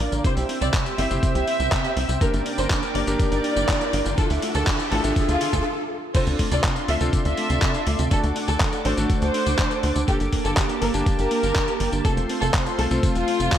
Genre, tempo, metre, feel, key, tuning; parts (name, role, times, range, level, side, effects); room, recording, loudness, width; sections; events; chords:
italo disco; 122 BPM; 4/4; straight; D minor; A4 = 440 Hz
dark studio violin section; melody; 0.0-13.6 s; F4 to E5; -27 LUFS; equal; ping-pong delay
warm analog pad; sustained chords; 0.0-13.6 s; Bb3 to E6; -31 LUFS; equal; chorus
mellow electric guitar; arpeggios; 0.0-13.6 s; C3 to Bb4; -29 LUFS; right 3 dB; low-pass filter, ping-pong delay
clear electric grand piano; stabs; 0.0-13.6 s; A3 to A5; -29 LUFS; left 2 dB; low-pass filter
tight sequencer bass; bass; 0.0-13.5 s; F1 to D2; -25 LUFS; equal; tube saturation
dusty soul sampler-style drum kit; drums; 0.0-13.6 s; crash cymbal, handclaps, hi-hat, tambourine; -28 LUFS; equal; overdrive, gated reverb
riser; sound effects; 0.4-5.7 s; -34 LUFS; equal
electronic kick drum; drums; 0.2-13.6 s; -23 LUFS; equal; overdrive
light reverb; -20 LUFS; side -10 dB against mid
0.0-6.1 A section; 6.1-13.6 B section
riser 0.4-5.7; stop 5.7-6.1
0.2 C; 2.2 Gm; 4.2 Dmadd9; 6.1 Dm7; 8.1 D; 10.1 Gmadd9; 12.0 F